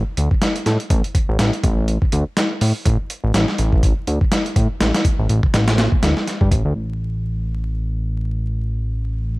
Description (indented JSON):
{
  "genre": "breakbeat, breaks",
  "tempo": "123 BPM",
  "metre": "4/4",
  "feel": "swing 57% on 16ths",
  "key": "unclear",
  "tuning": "A4 = 439 Hz",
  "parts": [
    { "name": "fat analog bass", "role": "bass", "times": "0.0-9.4 s", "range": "A1 to A2", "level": "-18 LUFS", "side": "equal", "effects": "tube saturation" },
    { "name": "dusty soul sampler-style drum kit", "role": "drums", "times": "0.2-6.6 s", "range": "hi-hat, kick drum, snare drum", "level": "-18 LUFS", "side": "equal", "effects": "overdrive" }
  ],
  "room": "light reverb",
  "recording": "vinyl crackle",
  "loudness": "-16 LUFS",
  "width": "side -21 dB against mid",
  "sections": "0.0-6.8 A section; 6.8-9.4 B section",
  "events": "none",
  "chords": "none"
}